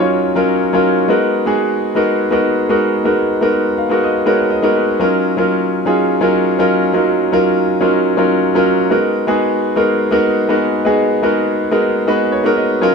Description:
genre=disco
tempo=123 BPM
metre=4/4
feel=straight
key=unclear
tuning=A4 = 440 Hz
part: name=warm concert grand piano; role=solo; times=0.0-12.9 s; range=Gb3 to F5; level=-12 LUFS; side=equal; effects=none
room=moderate stone room reverb, RT60 1.1 s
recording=band playing live in one room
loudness=-12 LUFS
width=side -5 dB against mid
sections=0.0-12.8 A section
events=grand piano fill 3.5-5.0, 12.1-12.8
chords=0.0 Ebm7; 1.1 Abm7; 5.0 Ebm7; 8.9 Abm7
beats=0.12 0.61 | 1.09 1.58 2.07 2.56 | 3.05 3.54 4.03 4.51 | 5.00 5.49 5.98 6.47 | 6.96 7.44 7.93 8.42 | 8.91 9.40 9.88 10.37 | 10.86 11.35 11.84 12.33 | 12.82

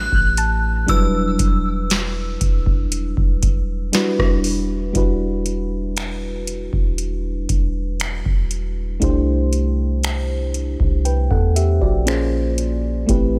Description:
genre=contemporary R&B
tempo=59 BPM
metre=4/4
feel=straight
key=E minor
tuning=A4 = 440 Hz
part: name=synth chime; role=melody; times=0.0-1.9 s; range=E6 to F#6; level=-26 LUFS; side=equal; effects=ensemble chorus, phaser, tremolo, tape echo
part: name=mellow FM electric piano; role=accompaniment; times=0.0-13.4 s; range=F#3 to G5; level=-26 LUFS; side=equal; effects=chorus
part: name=soft 808-style bass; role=bass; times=0.0-13.4 s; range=E1 to E2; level=-24 LUFS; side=equal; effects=none
part: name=soft round pluck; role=texture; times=0.0-1.4 s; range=G5 to A5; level=-32 LUFS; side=equal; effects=chorus, tape echo
part: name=booming analog drum machine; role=drums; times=0.1-13.3 s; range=finger snaps, hi-hat, kick drum, rim click, snare drum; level=-22 LUFS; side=equal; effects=none
room=digital ambience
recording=none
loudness=-20 LUFS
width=mono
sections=0.0-5.0 A section; 5.0-13.4 B section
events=none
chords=0.0 A9sus4; 0.9 Em7; 9.0 C69; 12.1 A#m7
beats=| 0.88 1.90 2.92 3.93 | 4.95 5.97 6.99 8.00 | 9.02 10.04 11.05 12.07 | 13.09

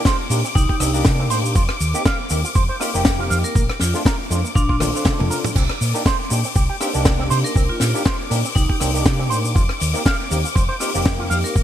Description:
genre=nu-disco, nu disco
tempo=120 BPM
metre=4/4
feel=swing 56% on 16ths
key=C dorian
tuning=A4 = 440 Hz
part: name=bright studio string section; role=sustained chords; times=0.0-11.6 s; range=D6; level=-30 LUFS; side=left 3 dB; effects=vintage 12-bit sampler grit, sidechain pumping
part: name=electric guitar with an envelope filter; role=riff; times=0.1-11.6 s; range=Bb3 to F5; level=-28 LUFS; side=right 5 dB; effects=wide subtle chorus, ping-pong delay
part: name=electronic kick drum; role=drums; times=0.1-11.6 s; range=none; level=-19 LUFS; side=equal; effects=overdrive
part: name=tight funk drum kit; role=drums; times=0.1-11.6 s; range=crash cymbal, hi-hat, rim click, shaker, snare drum, toms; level=-23 LUFS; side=left 2 dB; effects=none
part: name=overdriven tine electric piano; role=accompaniment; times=0.3-11.5 s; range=A3 to A4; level=-26 LUFS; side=equal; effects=ensemble chorus, sidechain pumping, ping-pong delay
part: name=hollow-body short-scale fingered electric bass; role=bass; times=0.3-11.6 s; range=F1 to C3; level=-21 LUFS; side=equal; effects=none
part: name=vibraphone with hard mallets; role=melody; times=0.6-11.5 s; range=D4 to Bb4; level=-28 LUFS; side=equal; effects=ping-pong delay
room=light reverb, small room ambience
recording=bright 1980s-style digital production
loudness=-16 LUFS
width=side -11 dB against mid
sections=0.0-11.6 A section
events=drum fill 4.8-5.6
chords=0.0 Cm9; 1.6 F9sus4; 3.6 Bbmaj9; 5.6 Cm9; 9.6 F9sus4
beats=0.05 0.55 1.05 | 1.55 2.05 2.55 3.05 | 3.55 4.05 4.55 5.05 | 5.55 6.05 6.55 7.05 | 7.55 8.05 8.55 9.05 | 9.55 10.05 10.55 11.05 | 11.55

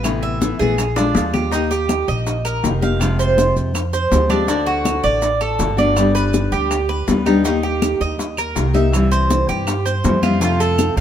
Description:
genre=latin, Cuban son and guajira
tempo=162 BPM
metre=4/4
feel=straight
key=unclear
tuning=A4 = 440 Hz
part: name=nylon-string guitar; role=accompaniment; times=0.0-11.0 s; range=C3 to G4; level=-20 LUFS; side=left 3 dB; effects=none
part: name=Cuban tres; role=arpeggios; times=0.0-11.0 s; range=D4 to F5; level=-20 LUFS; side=right 2 dB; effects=none
part: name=upright bass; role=bass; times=0.0-11.0 s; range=F1 to G2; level=-21 LUFS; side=right 1 dB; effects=none
part: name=claves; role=percussion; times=0.0-11.0 s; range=none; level=-31 LUFS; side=right 5 dB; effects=none
part: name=congas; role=percussion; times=0.0-11.0 s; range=none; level=-24 LUFS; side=left 2 dB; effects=none
part: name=maracas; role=percussion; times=0.0-11.0 s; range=none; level=-32 LUFS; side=right 5 dB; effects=none
part: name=bongos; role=percussion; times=0.1-11.0 s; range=none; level=-26 LUFS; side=left 4 dB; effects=none
room=light reverb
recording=minimal, uncompressed stereo recording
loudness=-15 LUFS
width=side -10 dB against mid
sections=0.0-1.5 A section; 1.5-11.0 B section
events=drum fill 1.0-1.5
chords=0.0 Amadd9; 0.8 Bb7; 1.5 Eb; 3.0 Fmadd9; 4.5 D; 6.0 G; 7.4 Eb; 8.9 C; 10.4 F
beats=| 0.04 0.41 0.79 1.16 | 1.52 1.90 2.27 2.63 | 3.01 3.38 3.75 4.12 | 4.49 4.86 5.23 5.60 | 5.97 6.34 6.71 7.08 | 7.45 7.82 8.19 8.56 | 8.93 9.30 9.67 10.04 | 10.41 10.78

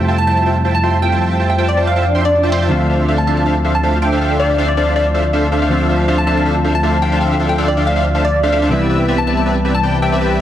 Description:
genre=future bass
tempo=160 BPM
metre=4/4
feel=swing 54% on 16ths, half-time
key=D dorian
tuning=A4 = 440 Hz
part: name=glassy digital keys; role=accompaniment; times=0.0-10.4 s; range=C3 to F4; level=-20 LUFS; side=left 1 dB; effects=chorus
part: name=big bright polysynth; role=riff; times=0.0-10.4 s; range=C4 to C6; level=-18 LUFS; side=equal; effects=analog chorus
part: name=wide detuned saw bass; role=bass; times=0.0-10.4 s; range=C2 to F2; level=-18 LUFS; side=equal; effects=chorus
part: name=glassy wavetable pluck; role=melody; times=0.2-10.4 s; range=D5 to A5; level=-19 LUFS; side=equal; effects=chorus, digital delay
part: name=swell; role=sound effects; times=2.1-2.7 s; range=none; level=-22 LUFS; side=right 2 dB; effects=none
part: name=electronic hi-hat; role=drums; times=2.5-2.6 s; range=none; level=-29 LUFS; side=right 2 dB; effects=low-pass filter on hats
room=moderate lush hall reverb, RT60 1.7 s, digital ambience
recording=heavily compressed radio sound, multiband compression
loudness=-12 LUFS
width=side -11 dB against mid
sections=0.0-10.4 A section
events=swell 2.1-2.7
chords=0.0 Fmaj9; 2.7 Dm7; 8.7 Cmaj7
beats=0.08 0.46 0.83 | 1.21 1.58 1.96 2.33 | 2.71 3.08 3.46 3.83 | 4.21 4.58 4.96 5.33 | 5.71 6.08 6.46 6.83 | 7.21 7.58 7.96 8.33 | 8.71 9.08 9.46 9.83 | 10.21

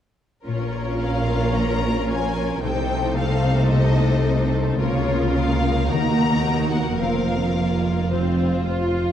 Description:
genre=classical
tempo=110 BPM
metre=4/4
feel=straight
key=Bb minor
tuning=A4 = 440 Hz
part: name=warm symphonic violin section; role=melody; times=0.5-8.6 s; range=Db5 to Bb5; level=-29 LUFS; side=left 3 dB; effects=none
part: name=warm symphonic violin section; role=second line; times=0.5-9.1 s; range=F4 to Db5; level=-28 LUFS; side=left 1 dB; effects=none
part: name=clear symphonic viola section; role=accompaniment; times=0.5-9.1 s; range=A3 to F4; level=-26 LUFS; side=right 1 dB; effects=none
part: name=concert harp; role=arpeggios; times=0.5-9.1 s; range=Bb2 to C5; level=-26 LUFS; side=left 6 dB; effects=none
part: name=bright symphonic double bass section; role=bass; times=0.5-9.0 s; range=F1 to Eb2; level=-24 LUFS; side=right 2 dB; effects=none
part: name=rich symphonic cello section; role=bass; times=0.5-9.0 s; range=Eb2 to Db3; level=-26 LUFS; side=right 2 dB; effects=none
room=wet concert hall reverb, RT60 2.2 s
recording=dark, warm production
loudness=-19 LUFS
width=side -10 dB against mid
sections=0.5-9.1 A section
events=none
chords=0.5 Bbm; 2.6 Adim/C; 4.8 Bbm/Db; 5.9 Ebm; 7.0 Fsus4; 8.1 F5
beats=| 0.48 1.03 1.57 2.10 | 2.64 3.18 3.71 4.25 | 4.79 5.33 5.89 6.45 | 7.00 7.56 8.11 8.67

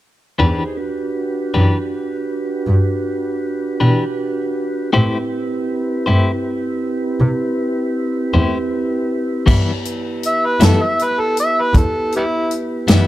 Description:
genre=slow blues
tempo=53 BPM (dotted quarters)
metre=12/8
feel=straight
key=E minor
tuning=A4 = 436 Hz
part: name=clean electric guitar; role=accompaniment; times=0.4-13.1 s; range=E3 to C5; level=-20 LUFS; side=left 3 dB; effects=tremolo, plate reverb
part: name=mellow tonewheel organ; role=sustained chords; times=0.4-13.1 s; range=B3 to C5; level=-21 LUFS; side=right 2 dB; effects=slow rotary speaker, plate reverb
part: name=bright double bass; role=bass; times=0.4-13.0 s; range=E2 to C3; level=-16 LUFS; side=equal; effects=none
part: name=natural country drum kit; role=drums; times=9.5-13.1 s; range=crash cymbal, hi-hat, kick drum, snare drum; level=-16 LUFS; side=equal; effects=none
part: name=overdriven harmonica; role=melody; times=10.3-12.5 s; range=G3 to E5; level=-17 LUFS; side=equal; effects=plate reverb
room=moderate small room reverb, RT60 0.5 s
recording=dark, warm production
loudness=-16 LUFS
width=side -15 dB against mid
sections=0.4-9.5 A section; 9.5-13.1 B section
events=harmonica solo 9.5-13.1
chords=0.4 Em7; 5.0 Am7; 9.5 Em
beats=| 0.41 1.54 2.68 3.82 | 4.95 6.09 7.22 8.36 | 9.49 10.62 11.76 12.89

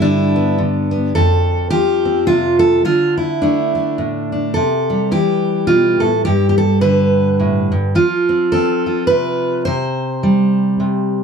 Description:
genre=folk, solo fingerstyle acoustic guitar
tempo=106 BPM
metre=3/4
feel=swing 57% on 8ths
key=C major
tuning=A4 = 440 Hz
part: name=fingerpicked steel-string acoustic guitar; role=solo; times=0.0-11.2 s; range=F2 to C5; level=-13 LUFS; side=equal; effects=none
room=moderate studio reverb, RT60 0.5 s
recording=dark, warm production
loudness=-13 LUFS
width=side -6 dB against mid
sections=0.0-11.2 A section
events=none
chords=0.0 G; 1.1 F; 2.8 D5; 4.5 C; 6.2 G; 8.0 F; 9.7 C5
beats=0.01 0.58 | 1.15 1.71 2.28 | 2.85 3.41 3.98 | 4.55 5.12 5.68 | 6.25 6.82 7.39 | 7.95 8.52 9.09 | 9.66 10.23 10.80

